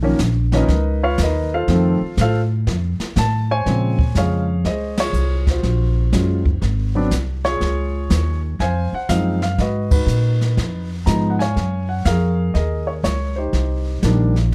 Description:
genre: jazz piano trio.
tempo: 121 BPM.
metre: 4/4.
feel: swing 67% on 8ths.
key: Bb minor.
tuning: A4 = 440 Hz.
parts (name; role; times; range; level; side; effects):
warm grand piano; melody; 0.0-14.5 s; Db3 to Bb5; -24 LUFS; equal; none.
upright bass; bass; 0.0-14.5 s; Gb1 to Bb2; -21 LUFS; equal; none.
jazz brush drum kit; drums; 0.2-14.5 s; brushed snare drum, hi-hat, kick drum, ride cymbal, snare drum; -25 LUFS; equal; none.
room: light reverb.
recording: dark, warm production.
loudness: -19 LUFS.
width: mono.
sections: 0.0-3.7 A section; 3.7-14.5 B section.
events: grand piano solo 0.0-3.7; band accent 4.9, 9.8.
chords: 0.0 Bmaj9#11; 1.7 F; 3.7 Bbm9; 5.6 Gbmaj9#11; 6.6 Ab7; 7.6 Dbmaj9; 9.6 Abm9; 10.6 Db7 (rootless); 11.6 Gbmaj9; 13.5 Cm7.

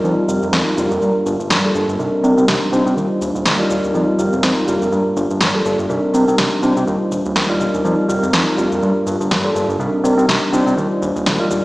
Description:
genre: filtered disco house.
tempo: 123 BPM.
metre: 4/4.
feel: swing 57% on 16ths.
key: unclear.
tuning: A4 = 435 Hz.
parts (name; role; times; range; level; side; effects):
bell-like tine electric piano; accompaniment; 0.0-11.6 s; G3 to C5; -17 LUFS; equal; medium stereo tremolo, phaser, low-pass filter.
fat analog bass; bass; 0.0-11.6 s; Eb1 to C3; -20 LUFS; equal; tube saturation, low-pass filter.
electronic shaker and snare drum; drums; 0.0-11.6 s; none; -20 LUFS; equal; studio reverb.
room: moderate echo chamber reverb, RT60 1.5 s, digital ambience.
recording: played on a big sound system in a bare room, stone room reverb, small speaker sound.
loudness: -14 LUFS.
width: side -20 dB against mid.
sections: 0.0-11.6 A section.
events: filter sweep 0.0-11.6.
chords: 0.0 F9sus4; 1.0 Gm9; 2.0 Cm9; 3.0 Ebmaj9; 3.9 F9sus4; 4.9 Gm9; 5.9 Cm9; 6.9 Ebmaj9; 7.8 F9sus4; 8.8 Gm9; 9.8 Cm9; 10.8 Ebmaj9.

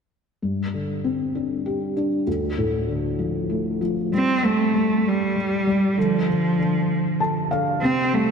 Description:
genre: six-eight pop ballad.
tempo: 65 BPM (dotted quarters).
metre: 6/8.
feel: straight.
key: unclear.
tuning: A4 = 440 Hz.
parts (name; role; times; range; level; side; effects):
felt-muted upright piano; accompaniment; 0.4-8.3 s; D2 to A5; -23 LUFS; left 2 dB; wide subtle chorus.
warm cello; melody; 4.1-8.3 s; F3 to C4; -20 LUFS; right 2 dB; analog delay.
room: wet lush hall reverb, RT60 2.9 s.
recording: dreamy mix soaked in reverb.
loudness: -20 LUFS.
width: side -6 dB against mid.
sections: 0.4-4.1 A section; 4.1-8.3 B section.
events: felt piano fill 6.9-7.8.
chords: 0.4 Gsus4; 2.3 Dm; 4.1 N.C.; 7.8 C5.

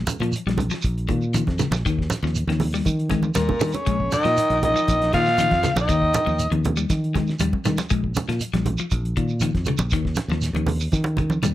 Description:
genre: afrobeat.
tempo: 119 BPM.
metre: 4/4.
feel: straight.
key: Bb dorian.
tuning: A4 = 442 Hz.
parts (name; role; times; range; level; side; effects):
fingered electric bass; bass; 0.0-11.5 s; Bb1 to Eb3; -24 LUFS; equal; none.
cloth-damped thuddy drum kit; drums; 0.1-11.5 s; hi-hat, kick drum, snare drum; -28 LUFS; equal; none.
congas; percussion; 0.1-11.5 s; none; -27 LUFS; right 3 dB; none.
shekere; percussion; 0.1-11.5 s; none; -30 LUFS; right 4 dB; none.
clean electric guitar; arpeggios; 0.2-11.5 s; Db3 to Ab3; -27 LUFS; left 6 dB; none.
raspy alto saxophone; melody; 3.4-6.5 s; Bb4 to F5; -21 LUFS; equal; plate reverb.
raspy baritone saxophone; second line; 3.4-6.5 s; Bb2 to F3; -30 LUFS; left 8 dB; plate reverb.
trombone with bucket mute; second line; 3.4-6.5 s; Bb3 to F4; -28 LUFS; right 3 dB; plate reverb.
room: moderate club reverb, RT60 0.5 s.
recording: none.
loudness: -19 LUFS.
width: side -14 dB against mid.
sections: 0.0-11.5 A section.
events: drum fill 3.1-3.9, 10.9-11.5.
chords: 0.0 Bb5; 1.9 Eb; 3.9 Bbm; 5.9 Eb; 7.9 Bb5; 9.9 N.C..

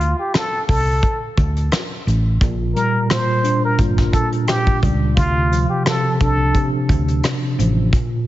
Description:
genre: hip hop, boom-bap hip-hop.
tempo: 87 BPM.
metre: 4/4.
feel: swing 55% on 16ths.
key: D minor.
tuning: A4 = 440 Hz.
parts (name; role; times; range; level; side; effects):
trumpet with plunger mute; melody; 0.0-6.7 s; F4 to C5; -22 LUFS; equal; high-pass filter, low-pass filter, analog delay.
hollow-body short-scale fingered electric bass; bass; 0.0-7.9 s; G1 to D2; -18 LUFS; equal; none.
soft brush drum kit; drums; 0.0-8.1 s; hi-hat, kick drum, rim click, snare drum; -20 LUFS; equal; none.
mellow tine electric piano; accompaniment; 2.4-8.3 s; Bb2 to D4; -20 LUFS; equal; medium stereo tremolo, cassette tape, high-pass filter, low-pass filter.
room: light reverb, small room reverb.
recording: heavily compressed radio sound, nothing above 7.7 kHz.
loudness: -15 LUFS.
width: side -15 dB against mid.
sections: 0.0-8.3 A section.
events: break 0.0-2.4, 7.9-8.3.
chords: 0.0 D5; 2.4 Bb6; 5.2 Dm7.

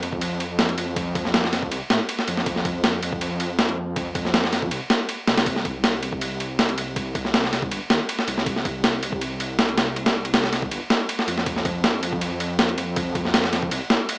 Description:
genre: drum and bass, jungle.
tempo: 160 BPM.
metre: 4/4.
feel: straight.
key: unclear.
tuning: A4 = 440 Hz.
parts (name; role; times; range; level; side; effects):
detuned saw bass; bass; 0.0-14.0 s; G1 to A2; -28 LUFS; equal; none.
breakbeat sampler-style drum kit; drums; 0.0-14.2 s; kick drum, ride cymbal, snare drum; -21 LUFS; equal; none.
room: light reverb, digital ambience.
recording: small speaker sound.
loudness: -20 LUFS.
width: side -26 dB against mid.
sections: 0.0-14.2 A section.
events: none.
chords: none.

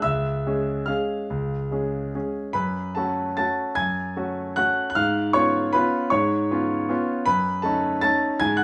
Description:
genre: classical, piano waltz.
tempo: 139-166 BPM.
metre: 3/4.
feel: rubato.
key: unclear.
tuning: A4 = 440 Hz.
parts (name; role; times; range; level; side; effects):
clear concert grand piano; solo; 0.0-8.6 s; C#2 to A6; -24 LUFS; equal; none.
room: light reverb.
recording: small room ambience.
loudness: -24 LUFS.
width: mono.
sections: 0.0-8.6 A section.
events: none.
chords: 0.0 C#; 2.6 F#m; 5.0 C#7/G#; 7.3 D#m7b5/F#.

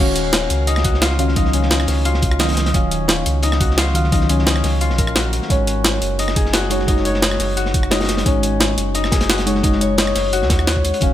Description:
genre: liquid drum and bass.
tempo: 174 BPM.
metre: 4/4.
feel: straight.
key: Eb minor.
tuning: A4 = 440 Hz.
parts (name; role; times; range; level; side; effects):
mellow FM electric piano; accompaniment; 0.0-11.1 s; Eb3 to F5; -23 LUFS; equal; chorus, phaser, digital delay.
Celtic harp; arpeggios; 0.0-11.1 s; Db4 to Db5; -22 LUFS; left 5 dB; digital delay.
warm sub bass; bass; 0.0-11.1 s; Eb1 to Eb2; -20 LUFS; equal; none.
crunchy breakbeat drum kit; drums; 0.2-11.1 s; hi-hat, snare drum; -25 LUFS; equal; high-pass filter on hats, studio reverb, high-pass filter on snare, high-pass filter on room.
jungle sampler-style drum kit; drums; 0.2-11.1 s; hi-hat, rim click, snare drum; -21 LUFS; equal; studio reverb.
electronic kick drum; drums; 0.8-11.1 s; none; -18 LUFS; equal; studio reverb.
room: light reverb, studio reverb.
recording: none.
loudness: -15 LUFS.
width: side -12 dB against mid.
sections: 0.0-11.1 A section.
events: drop 0.0-11.1.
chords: 0.0 Ebm9; 5.5 Ab7sus4.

